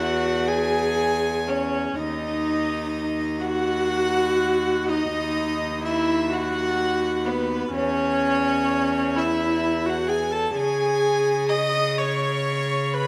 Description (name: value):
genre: classical, slow romantic movement for string quartet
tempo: 42 BPM (dotted quarters)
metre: 6/8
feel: rubato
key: unclear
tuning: A4 = 439 Hz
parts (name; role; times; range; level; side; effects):
- rich violin; melody; 0.0-13.1 s; B4 to D#6; -34 LUFS; equal; none
- warm violin; second line; 0.0-13.1 s; B4 to D#6; -34 LUFS; equal; none
- warm viola; accompaniment; 0.0-13.1 s; B3 to D#5; -25 LUFS; equal; none
- rich cello; bass; 0.0-13.1 s; D#2 to C#3; -30 LUFS; equal; none
room: wet recital hall reverb, RT60 1.6 s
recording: none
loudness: -23 LUFS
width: mono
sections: 0.0-13.1 A section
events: none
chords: 0.0 E; 2.0 D#m; 7.7 E5; 10.5 C#5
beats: 0.48 | 1.96 3.42 | 4.89 6.32 | 7.73 9.16 | 10.55 11.97